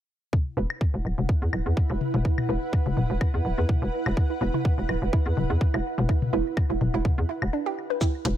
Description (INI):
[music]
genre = minimal techno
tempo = 125 BPM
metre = 4/4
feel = swing 55% on 16ths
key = unclear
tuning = A4 = 439 Hz
[part]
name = electronic kick drum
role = drums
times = 0.3-8.1 s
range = none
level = -23 LUFS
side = equal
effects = none
[part]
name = electronic toms and woodblock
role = percussion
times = 0.3-7.5 s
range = none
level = -30 LUFS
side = left 4 dB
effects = ping-pong delay
[part]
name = granular cloud pad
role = texture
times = 1.0-7.5 s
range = E4 to F#5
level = -33 LUFS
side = right 3 dB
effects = built-in reverb, sidechain pumping
[part]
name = filtered dub chord stab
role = stabs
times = 0.6-8.3 s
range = B3 to B4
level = -34 LUFS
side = left 1 dB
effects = analog chorus, ping-pong delay
[part]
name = hollow knocking FM bass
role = bass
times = 0.6-8.3 s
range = D1 to E2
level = -26 LUFS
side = equal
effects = sidechain pumping
[part]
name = hollow square pluck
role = riff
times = 4.3-8.1 s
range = D4 to B4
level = -30 LUFS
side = right 5 dB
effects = chorus, phaser, sidechain pumping, ping-pong delay
[part]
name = electronic shaker and hi-hat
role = drums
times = 8.0-8.4 s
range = none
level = -36 LUFS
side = equal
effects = none
[sound]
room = digital ambience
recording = none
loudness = -23 LUFS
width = side -11 dB against mid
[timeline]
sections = 0.3-8.0 A section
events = filter sweep on FM bass 0.3-8.0; filter sweep on synth stab 0.3-8.0; break 7.5-8.0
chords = 0.3 E5